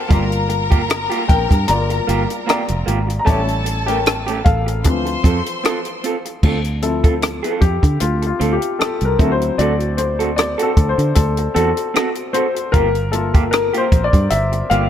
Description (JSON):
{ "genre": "lush 1970s-style soul", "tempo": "76 BPM", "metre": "4/4", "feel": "swing 54% on 16ths", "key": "D minor", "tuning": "A4 = 440 Hz", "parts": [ { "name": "bright studio violin section", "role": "second line", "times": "0.0-6.0 s", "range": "A4 to C6", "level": "-25 LUFS", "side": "left 2 dB", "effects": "none" }, { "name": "clear concert grand piano", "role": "accompaniment", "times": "0.0-14.9 s", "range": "E3 to Bb5", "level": "-20 LUFS", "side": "left 4 dB", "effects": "none" }, { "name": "electric guitar through a small old amp", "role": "riff", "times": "0.1-14.9 s", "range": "A3 to A4", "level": "-24 LUFS", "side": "right 5 dB", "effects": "spring reverb" }, { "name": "fingered electric bass", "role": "bass", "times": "0.1-14.9 s", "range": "F1 to D3", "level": "-20 LUFS", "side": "equal", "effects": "none" }, { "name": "compact cocktail drum kit", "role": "drums", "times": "0.1-14.9 s", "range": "crash cymbal, hi-hat, kick drum, rim click", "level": "-17 LUFS", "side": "equal", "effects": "none" } ], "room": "light reverb", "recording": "none", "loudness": "-15 LUFS", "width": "side -10 dB against mid", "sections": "0.0-6.4 A section; 6.4-14.9 B section", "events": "grand piano solo 0.0-6.4, 6.4-14.9", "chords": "0.1 Gm7; 3.3 A7; 4.9 Dm7; 9.2 D7; 12.7 Gm7" }